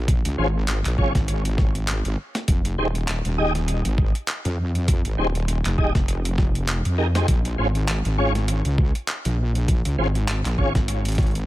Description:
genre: glitch hop.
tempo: 100 BPM.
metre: 4/4.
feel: swing 56% on 16ths.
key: Bb dorian.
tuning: A4 = 440 Hz.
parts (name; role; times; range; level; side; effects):
wobble bass; bass; 0.0-11.5 s; Eb1 to F2; -22 LUFS; equal; chorus, overdrive.
boom bap sampler-style drum kit; drums; 0.1-11.5 s; handclaps, hi-hat, snare drum; -29 LUFS; equal; overdrive.
electronic kick drum; drums; 0.1-11.3 s; none; -20 LUFS; equal; overdrive.
tonewheel organ; stabs; 0.4-10.7 s; Db4 to Eb5; -27 LUFS; equal; chorus vibrato, fast rotary speaker, vintage 12-bit sampler grit, sidechain pumping, dub echo.
room: little or no reverb.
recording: none.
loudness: -20 LUFS.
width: side -16 dB against mid.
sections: 0.0-11.5 A section.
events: none.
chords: 0.0 Bbm7; 2.5 Fm7; 7.3 Bbm7.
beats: | 0.08 0.68 1.28 1.88 | 2.48 3.08 3.68 4.28 | 4.88 5.48 6.08 6.68 | 7.28 7.88 8.48 9.08 | 9.68 10.28 10.88.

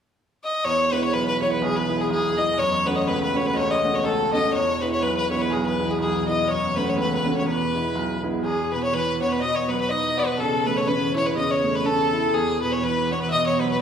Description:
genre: celtic folk.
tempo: 123 BPM.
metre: 2/4.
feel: swing 57% on 8ths.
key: E major.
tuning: A4 = 440 Hz.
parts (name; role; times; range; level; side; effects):
clear fiddle; melody; 0.4-13.8 s; G#4 to E5; -24 LUFS; left 2 dB; none.
clear fiddle; second line; 0.6-13.8 s; G#4 to D#5; -27 LUFS; left 2 dB; none.
clear baby grand piano; accompaniment; 0.6-13.8 s; B1 to F#4; -25 LUFS; right 3 dB; none.
muted studio string section; drone; 0.6-13.8 s; E2 to B2; -31 LUFS; right 1 dB; none.
room: wet large studio reverb, RT60 1.3 s.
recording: band playing live in one room.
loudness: -20 LUFS.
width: side -8 dB against mid.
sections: 0.7-8.4 A section; 8.4-13.8 B section.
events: none.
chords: 0.0 N.C.; 0.7 E; 2.6 F#m; 4.5 E; 6.5 F#m; 7.5 E; 8.4 E5; 9.4 B; 10.4 A; 12.3 E5; 13.3 B.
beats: 0.17 | 0.65 1.14 | 1.62 2.11 | 2.60 3.08 | 3.57 4.05 | 4.54 5.03 | 5.51 6.00 | 6.49 6.97 | 7.46 7.95 | 8.43 8.92 | 9.41 9.89 | 10.38 10.87 | 11.36 11.85 | 12.34 12.82 | 13.31 13.80.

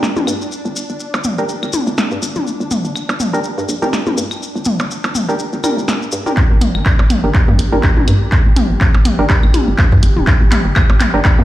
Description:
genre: minimal techno.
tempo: 123 BPM.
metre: 4/4.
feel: swing 56% on 16ths.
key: G minor.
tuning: A4 = 440 Hz.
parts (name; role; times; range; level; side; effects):
punchy analog drum machine; drums; 0.0-11.4 s; handclaps, hi-hat, snare drum; -20 LUFS; equal; high-pass filter on snare, low-pass filter on snare, high-pass filter on hats, low-pass filter on hats.
maracas; percussion; 0.0-6.4 s; none; -26 LUFS; left 3 dB; none.
swarming drone; texture; 0.0-11.4 s; D4 to G4; -28 LUFS; equal; built-in reverb, sidechain pumping.
hollow knocking FM bass; bass; 0.2-11.4 s; D1 to G2; -18 LUFS; equal; sidechain pumping, high-pass filter.
electronic toms, claves and percussion blips; percussion; 0.2-11.4 s; none; -20 LUFS; left 1 dB; dub echo.
percussive organ stab; stabs; 1.4-11.2 s; D4 to Bb4; -22 LUFS; right 1 dB; analog chorus, vintage 12-bit sampler grit, dub echo.
electronic kick drum; drums; 6.4-11.4 s; none; -12 LUFS; equal; none.
room: light reverb.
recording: played on a big sound system in a bare room, large studio reverb.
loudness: -12 LUFS.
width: side -15 dB against mid.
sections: 0.0-6.4 A section; 6.4-11.4 B section.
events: build-up 6.4-11.4; drum fill 6.4-11.4; filter sweep on synth stab 6.4-11.4.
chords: 0.0 Gm.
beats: 0.03 | 0.52 1.00 1.49 1.98 | 2.47 2.96 3.44 3.93 | 4.42 4.91 5.39 5.88 | 6.37 6.86 7.35 7.83 | 8.32 8.81 9.30 9.79 | 10.27 10.76 11.25.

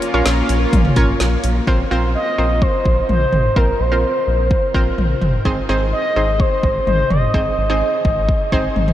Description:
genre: synth-pop.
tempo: 127 BPM.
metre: 4/4.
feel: straight.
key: Bb minor.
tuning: A4 = 442 Hz.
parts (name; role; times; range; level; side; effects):
analog pluck; accompaniment; 0.0-8.9 s; C4 to Db5; -22 LUFS; right 1 dB; chorus.
lush unison pad; sustained chords; 0.0-1.7 s; Bb3 to F4; -25 LUFS; left 1 dB; chorus.
deep house drum kit; drums; 0.0-8.9 s; hi-hat, kick drum, snare drum, toms; -19 LUFS; equal; none.
round analog bass; bass; 0.1-8.9 s; Gb1 to Bb1; -19 LUFS; equal; none.
expressive synth lead; melody; 2.1-8.9 s; Bb4 to Eb5; -20 LUFS; equal; chorus, diffuse ambient delay.
room: wet huge ambient reverb, RT60 8.1 s.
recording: dreamy mix soaked in reverb.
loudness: -14 LUFS.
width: side -12 dB against mid.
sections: 0.0-1.7 A section; 1.7-8.9 B section.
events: none.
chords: 0.0 Bbm; 1.7 Bbsus2; 5.5 Ab.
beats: 0.26 0.73 1.20 | 1.67 2.15 2.62 3.09 | 3.56 4.04 4.51 4.98 | 5.45 5.93 6.40 6.87 | 7.34 7.82 8.29 8.76.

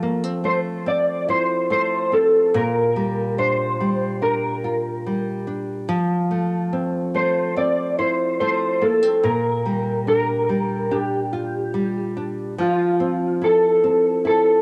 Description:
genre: indie pop.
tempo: 72 BPM.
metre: 4/4.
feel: straight.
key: unclear.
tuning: A4 = 442 Hz.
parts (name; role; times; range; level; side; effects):
nylon-string guitar; accompaniment; 0.0-14.6 s; Bb2 to F4; -26 LUFS; equal; subtle chorus, vibrato effect.
mellow electric guitar; melody; 0.5-14.6 s; F4 to D5; -22 LUFS; equal; ensemble chorus, analog delay.
room: moderate studio ambience, RT60 0.5 s.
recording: home recording on cassette.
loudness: -21 LUFS.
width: mono.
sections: 0.0-14.6 A section.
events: none.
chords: 0.0 Fmaj7; 2.5 Bb6; 5.9 Fmaj7; 9.2 Bb6; 12.6 Fmaj7.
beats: 0.03 0.87 1.71 | 2.54 3.38 4.22 5.05 | 5.89 6.73 7.57 8.40 | 9.24 10.07 10.91 11.75 | 12.58 13.42 14.26.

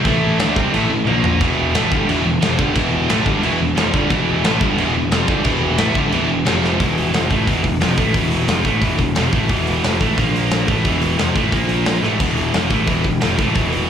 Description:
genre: heavy metal.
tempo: 178 BPM.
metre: 4/4.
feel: straight.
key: E phrygian.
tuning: A4 = 439 Hz.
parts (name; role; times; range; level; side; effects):
heavy high-gain guitar; riff; 0.0-13.9 s; E2 to D4; -22 LUFS; left 10 dB; distortion, slapback echo.
scooped high-gain guitar; riff; 0.0-13.9 s; E2 to D4; -21 LUFS; right 10 dB; distortion.
tight distorted guitar; riff; 0.0-6.8 s; E2 to D4; -25 LUFS; right 1 dB; distortion, slapback echo.
fuzz picked electric bass; bass; 0.0-13.9 s; E1 to D2; -21 LUFS; equal; overdrive.
big rock drum kit; drums; 0.0-13.8 s; crash cymbal, hi-hat, kick drum, snare drum, splash cymbal, toms; -20 LUFS; equal; none.
room: small room ambience.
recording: live gig heard through the venue's PA, club reverb.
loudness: -15 LUFS.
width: side -8 dB against mid.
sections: 0.0-6.8 A section; 6.8-13.9 B section.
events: drum fill 1.1-1.4, 6.6, 12.0.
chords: 0.0 A5; 1.1 A#5; 1.4 Em; 6.5 F5; 6.8 E5; 10.2 A#5; 10.7 E5; 11.5 A#5; 12.0 E5.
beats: | 0.06 0.40 0.73 1.07 | 1.41 1.75 2.08 2.42 | 2.76 3.10 3.43 3.77 | 4.11 4.44 4.78 5.12 | 5.45 5.79 6.12 6.46 | 6.80 7.13 7.47 7.81 | 8.14 8.48 8.82 9.16 | 9.49 9.83 10.17 10.51 | 10.84 11.18 11.52 11.86 | 12.20 12.54 12.87 13.21 | 13.55 13.89.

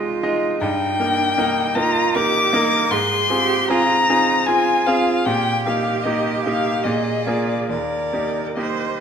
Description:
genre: classical, slow romantic movement for piano trio.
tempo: 76 BPM.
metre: 3/4.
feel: uneven beats, rubato.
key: Eb major.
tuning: A4 = 439 Hz.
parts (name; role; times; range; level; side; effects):
clear cello; second line; 0.0-9.0 s; D4 to C5; -24 LUFS; right 8 dB; none.
bright concert grand piano; accompaniment; 0.0-9.0 s; C2 to Eb5; -22 LUFS; right 1 dB; none.
dark violin; melody; 0.6-9.0 s; D5 to D6; -20 LUFS; left 4 dB; none.
room: moderate scoring stage reverb, RT60 1.9 s.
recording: none.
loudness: -17 LUFS.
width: side -7 dB against mid.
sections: 0.0-9.0 A section.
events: none.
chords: 0.0 Ab/C; 0.6 Eb/G; 2.9 Fm/Ab; 5.3 Eb/Bb; 6.9 Bb7; 7.7 Eb.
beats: | 0.62 1.39 2.16 | 2.92 3.69 4.48 | 5.27 6.06 6.86 | 7.70 8.57.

